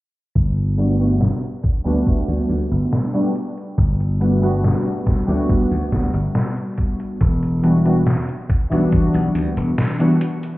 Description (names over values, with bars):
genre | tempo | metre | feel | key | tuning
vaporwave | 70 BPM | 4/4 | straight | G major | A4 = 440 Hz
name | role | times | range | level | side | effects
glassy slap bass | bass | 0.4-9.7 s | E1 to D2 | -19 LUFS | equal | tube saturation
detuned 8-bit digital drum machine | drums | 0.4-10.6 s | hi-hat, snare drum | -23 LUFS | equal | none
electronic kick drum | drums | 0.4-9.1 s | none | -18 LUFS | equal | none
warbly lo-fi synth keys | accompaniment | 0.8-10.2 s | E3 to F#4 | -20 LUFS | equal | lush chorus, tape echo
room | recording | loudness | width
moderate lush hall reverb, RT60 2.7 s | heard muffled through a wall, club reverb, EQ, low-pass filter | -16 LUFS | side -18 dB against mid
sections
0.4-10.6 A section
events
filter sweep 0.4-10.6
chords
0.4 Gmaj9; 7.2 Em9